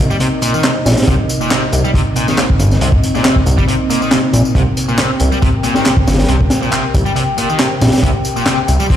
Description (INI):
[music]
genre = breakbeat, breaks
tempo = 138 BPM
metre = 4/4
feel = swing 53% on 16ths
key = C minor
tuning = A4 = 441 Hz
[part]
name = dark analog pad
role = sustained chords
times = 0.0-9.0 s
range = C4 to G5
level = -19 LUFS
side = equal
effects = chorus, phaser, sidechain pumping
[part]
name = fat analog bass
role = bass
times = 0.0-8.8 s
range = G1 to C2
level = -14 LUFS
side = equal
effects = none
[part]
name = distorted electric guitar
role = riff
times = 0.1-9.0 s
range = Bb2 to G3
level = -18 LUFS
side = left 1 dB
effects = distortion, low-pass filter, ping-pong delay
[part]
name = electronic tambourine and handclaps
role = drums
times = 0.1-9.0 s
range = none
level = -23 LUFS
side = left 1 dB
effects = none
[part]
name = crunchy breakbeat drum kit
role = drums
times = 0.2-9.0 s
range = hi-hat, kick drum, snare drum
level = -15 LUFS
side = equal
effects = none
[sound]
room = studio ambience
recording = played on a big sound system in a bare room, large studio reverb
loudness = -11 LUFS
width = side -10 dB against mid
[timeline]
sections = 0.0-9.0 A section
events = none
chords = 0.0 Cm7